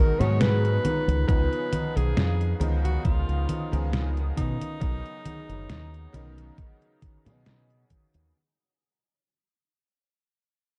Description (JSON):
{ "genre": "vaporwave", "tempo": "68 BPM", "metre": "4/4", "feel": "swing 55% on 16ths", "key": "unclear", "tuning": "A4 = 442 Hz", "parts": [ { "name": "edgy alto saxophone", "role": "melody", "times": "0.0-7.0 s", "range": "D#4 to C#5", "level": "-34 LUFS", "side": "equal", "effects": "tape echo" }, { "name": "bright electric grand piano", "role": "accompaniment", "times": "0.0-8.4 s", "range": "B2 to A#4", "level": "-39 LUFS", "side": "equal", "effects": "subtle chorus" }, { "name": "warbly tape-like pad", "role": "sustained chords", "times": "0.0-8.3 s", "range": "G#4 to D#6", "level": "-47 LUFS", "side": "equal", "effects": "none" }, { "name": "mellow electric guitar", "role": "riff", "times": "0.2-7.9 s", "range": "B3 to B4", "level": "-39 LUFS", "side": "equal", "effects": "lush chorus" }, { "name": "fingered electric bass with an envelope filter", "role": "bass", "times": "0.2-8.3 s", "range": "F#1 to B2", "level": "-28 LUFS", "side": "equal", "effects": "none" }, { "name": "detuned 8-bit digital drum machine", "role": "drums", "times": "0.2-8.3 s", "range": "congas, hi-hat, snare drum", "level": "-33 LUFS", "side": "equal", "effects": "studio reverb" }, { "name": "electronic kick drum", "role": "drums", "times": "1.3-8.1 s", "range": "none", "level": "-26 LUFS", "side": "equal", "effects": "studio reverb" } ], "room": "digital ambience", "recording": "dark, warm production", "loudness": "-25 LUFS", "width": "mono", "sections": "0.0-8.3 A section", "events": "fade-out 0.0-8.3", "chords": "0.0 G#m9; 0.8 C#13; 4.4 Bmaj9", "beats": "0.40 | 1.29 2.17 3.05 3.93 | 4.82 5.70 6.58 7.46" }